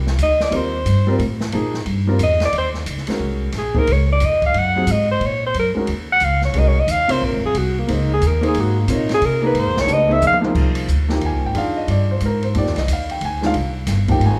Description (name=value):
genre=modal jazz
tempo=180 BPM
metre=3/4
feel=swing 63% on 8ths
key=Eb dorian, F dorian from 10.6 s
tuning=A4 = 439 Hz
part: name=warm concert grand piano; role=accompaniment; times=0.0-14.4 s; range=C3 to Ab5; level=-25 LUFS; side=equal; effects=none
part: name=upright bass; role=bass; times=0.0-14.4 s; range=Eb1 to C3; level=-22 LUFS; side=equal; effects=none
part: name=open jazz drum kit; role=drums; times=0.1-14.3 s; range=crash cymbal, hi-hat, kick drum, ride cymbal, snare drum, toms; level=-30 LUFS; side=equal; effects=none
part: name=breathy alto saxophone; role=melody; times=0.2-10.4 s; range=Bb3 to Gb5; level=-21 LUFS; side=equal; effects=none
room=moderate recital hall reverb, RT60 1.5 s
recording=recorded in a church or concert hall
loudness=-18 LUFS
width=mono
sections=0.0-2.5 A section; 2.5-10.6 A section; 10.6-14.4 A section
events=alto saxophone solo 0.0-10.6; drum fill 9.9-10.6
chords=0.0 Eb; 2.5 Ebm11; 6.5 Ab/Eb; 10.6 Fm9